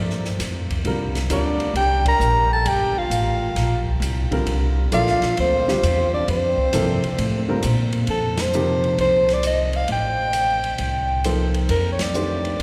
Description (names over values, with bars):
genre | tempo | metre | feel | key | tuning
modal jazz | 133 BPM | 4/4 | swing 67% on 8ths | F mixolydian from 8.1 s | A4 = 440 Hz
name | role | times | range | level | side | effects
warm baby grand piano | accompaniment | 0.0-12.6 s | C3 to D5 | -29 LUFS | equal | none
upright bass | bass | 0.0-12.6 s | G1 to Bb2 | -26 LUFS | equal | none
open jazz drum kit | drums | 0.1-12.6 s | hi-hat, kick drum, ride cymbal, snare drum | -32 LUFS | equal | none
mellow soprano saxophone | melody | 1.3-12.6 s | A4 to Bb5 | -24 LUFS | equal | none
warm trombone | second line | 1.3-7.6 s | C4 to Bb4 | -31 LUFS | equal | none
room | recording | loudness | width
wet cathedral reverb, RT60 5.0 s | recorded in a church or concert hall | -21 LUFS | mono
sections
0.0-8.1 A section; 8.1-12.6 B section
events
band accent 2.0, 8.3, 11.9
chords
0.0 Bb5; 0.9 C9sus4; 4.5 Bbsus2; 8.1 F9; 11.7 Gm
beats
0.41 | 0.86 1.31 1.76 2.21 | 2.66 3.11 3.57 4.02 | 4.47 4.92 5.37 5.83 | 6.28 6.73 7.18 7.63 | 8.09 8.54 8.99 9.44 | 9.89 10.35 10.80 11.25 | 11.70 12.15 12.60